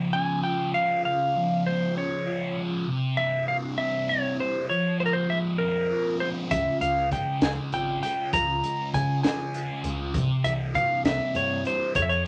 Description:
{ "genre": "psychedelic rock", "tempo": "66 BPM (dotted quarters)", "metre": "6/8", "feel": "straight", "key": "unclear", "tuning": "A4 = 439 Hz", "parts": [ { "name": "thick fuzz guitar", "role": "riff", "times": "0.0-12.3 s", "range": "C3 to F4", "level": "-31 LUFS", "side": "equal", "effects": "distortion, phaser" }, { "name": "clean lap steel guitar", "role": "melody", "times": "0.1-12.3 s", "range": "Bb4 to Bb5", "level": "-28 LUFS", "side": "equal", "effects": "none" }, { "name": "picked electric bass with an envelope filter", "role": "bass", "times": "6.5-12.2 s", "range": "Ab1 to Db3", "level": "-34 LUFS", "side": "equal", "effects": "none" }, { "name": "crunchy breakbeat drum kit", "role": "drums", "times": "6.5-12.1 s", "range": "hi-hat, kick drum, snare drum", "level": "-31 LUFS", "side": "equal", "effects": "none" } ], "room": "wet studio reverb, RT60 0.6 s", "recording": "none", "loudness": "-26 LUFS", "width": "mono", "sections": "0.0-12.3 A section", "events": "none", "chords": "0.0 Db; 2.9 C; 4.7 Fm; 6.5 Db; 10.1 C", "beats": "0.13 | 1.04 1.95 | 2.87 3.78 | 4.69 5.60 | 6.50 7.41 | 8.32 9.23 | 10.14 11.04 | 11.95" }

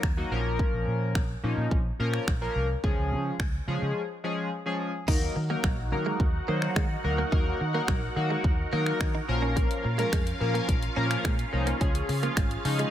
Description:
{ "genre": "dance-pop", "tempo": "107 BPM", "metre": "4/4", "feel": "straight", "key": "Eb minor", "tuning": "A4 = 439 Hz", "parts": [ { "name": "vintage muted fingered electric bass", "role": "bass", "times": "0.0-12.8 s", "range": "Ab1 to Eb3", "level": "-30 LUFS", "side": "equal", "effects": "sidechain pumping" }, { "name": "house drum kit", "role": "drums", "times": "0.0-12.9 s", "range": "crash cymbal, finger snaps, hi-hat, kick drum", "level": "-28 LUFS", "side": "equal", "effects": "none" }, { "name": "chorused polysynth", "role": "accompaniment", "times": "0.2-12.9 s", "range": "F3 to C5", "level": "-31 LUFS", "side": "left 2 dB", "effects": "sidechain pumping" }, { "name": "filtered supersaw swell", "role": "sustained chords", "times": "5.1-12.9 s", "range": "Db4 to Gb5", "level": "-33 LUFS", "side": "right 1 dB", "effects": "phaser, sidechain pumping" }, { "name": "direct-recorded clean electric guitar", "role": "riff", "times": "5.1-12.9 s", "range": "Gb3 to Eb4", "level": "-36 LUFS", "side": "right 4 dB", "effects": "analog chorus" } ], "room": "digital ambience", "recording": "none", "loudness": "-25 LUFS", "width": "side -11 dB against mid", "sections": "0.0-5.1 A section; 5.1-12.9 B section", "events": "break 4.0-5.1", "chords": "0.3 Bbm; 2.8 Db; 5.1 Ebm; 9.3 Bbm; 11.8 Db", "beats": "0.03 | 0.59 1.16 1.72 2.28 | 2.84 3.40 3.96 4.52 | 5.08 5.64 6.20 6.76 | 7.32 7.88 8.45 9.01 | 9.57 10.13 10.69 11.25 | 11.81 12.37" }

